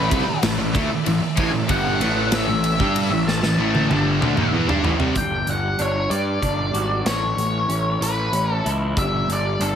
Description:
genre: quiet-loud alternative rock.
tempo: 63 BPM (dotted quarters).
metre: 6/8.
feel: straight.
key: unclear.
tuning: A4 = 440 Hz.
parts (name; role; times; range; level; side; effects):
octave-fuzz lead guitar; melody; 0.0-9.8 s; A4 to A5; -25 LUFS; left 2 dB; distortion, tape echo.
bright studio string section; sustained chords; 0.0-5.1 s; A3 to E5; -35 LUFS; left 1 dB; none.
distorted electric guitar; riff; 0.0-5.1 s; G2 to G4; -26 LUFS; left 10 dB; distortion.
distorted electric guitar; riff; 0.0-5.1 s; G2 to G4; -27 LUFS; equal; overdrive.
thick fuzz guitar; riff; 0.0-5.1 s; G2 to G4; -24 LUFS; right 9 dB; distortion.
fuzz picked electric bass; bass; 0.0-9.8 s; G1 to G2; -24 LUFS; equal; overdrive.
big rock drum kit; drums; 0.1-9.8 s; hi-hat, kick drum, ride cymbal, snare drum, toms; -24 LUFS; equal; none.
electric guitar through a small old amp; arpeggios; 5.2-9.8 s; A2 to F#4; -27 LUFS; right 2 dB; ensemble chorus, tape echo.
room: light reverb, small room reverb.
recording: heavily compressed radio sound.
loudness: -18 LUFS.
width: side -8 dB against mid.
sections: 0.0-5.2 A section; 5.2-9.8 B section.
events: drum fill 3.3-5.2; half time 5.2-9.8.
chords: 0.0 A5; 5.2 G5; 7.1 Aadd9; 9.0 G5.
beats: 0.43 | 1.37 2.32 | 3.26 4.21 | 5.16 6.11 | 7.06 8.02 | 8.97.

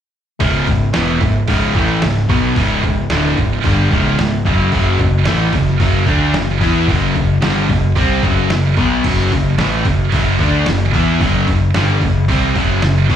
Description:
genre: heavy metal.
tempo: 111 BPM.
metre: 4/4.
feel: straight.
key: C# phrygian.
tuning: A4 = 441 Hz.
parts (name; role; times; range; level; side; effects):
heavy high-gain guitar; riff; 0.4-13.2 s; C#2 to E4; -20 LUFS; right 12 dB; distortion, slapback echo.
overdriven electric guitar; riff; 0.4-13.2 s; C#2 to E4; -20 LUFS; right 2 dB; none.
sludgy distorted guitar; riff; 0.4-13.2 s; C#2 to E4; -18 LUFS; left 5 dB; overdrive.
growling picked electric bass; bass; 0.4-13.2 s; C#1 to E2; -18 LUFS; equal; overdrive.
trip hop sampler-style drum kit; drums; 0.4-13.2 s; crash cymbal, hi-hat, kick drum, snare drum; -20 LUFS; equal; none.
room: little or no reverb.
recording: live gig heard through the venue's PA, club reverb.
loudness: -12 LUFS.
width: side -9 dB against mid.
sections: 0.4-13.2 A section.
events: none.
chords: 0.4 C#m; 4.7 F#5.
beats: | 0.40 0.94 1.48 2.02 | 2.56 3.10 3.65 4.19 | 4.73 5.27 5.81 6.35 | 6.89 7.43 7.97 8.51 | 9.05 9.59 10.13 10.67 | 11.21 11.74 12.28 12.82.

